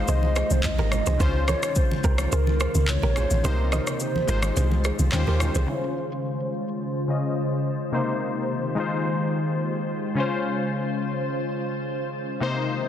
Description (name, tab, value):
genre	afrobeats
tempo	107 BPM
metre	4/4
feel	straight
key	unclear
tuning	A4 = 440 Hz
part	hollow clarinet-like synth lead	melody	0.0-5.4 s	Bb4 to F5	-30 LUFS	right 1 dB	chorus, phaser, digital delay
part	warm analog keys	accompaniment	0.0-12.9 s	C3 to Eb5	-28 LUFS	left 3 dB	chorus, low-pass filter
part	glassy FM pad	sustained chords	0.0-12.9 s	Db3 to C5	-29 LUFS	equal	ensemble chorus, built-in reverb, low-pass filter
part	deep log drum bass	bass	0.0-5.7 s	Ab1 to Eb2	-23 LUFS	equal	none
part	direct-recorded clean electric guitar	riff	0.1-5.7 s	F4 to Eb5	-34 LUFS	right 7 dB	spring reverb, digital delay
part	afro-pop drum kit	drums	0.1-5.7 s	handclaps, kick drum, rim click, shaker	-27 LUFS	equal	soft clipping on snare
part	congas	percussion	0.2-5.7 s	none	-32 LUFS	right 2 dB	none
room	light reverb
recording	dense, heavily limited modern master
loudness	-22 LUFS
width	side -10 dB against mid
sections	0.0-5.7 A section; 5.7-12.9 B section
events	kick muted 3.4-5.7; filter sweep 5.7-12.9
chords	0.0 Ab6; 1.2 Dbmaj7; 3.4 Cm7; 4.3 Ab6; 5.1 Eb13; 5.7 Dbmaj7; 7.9 Cm7; 8.8 Ab6; 10.2 Dbmaj7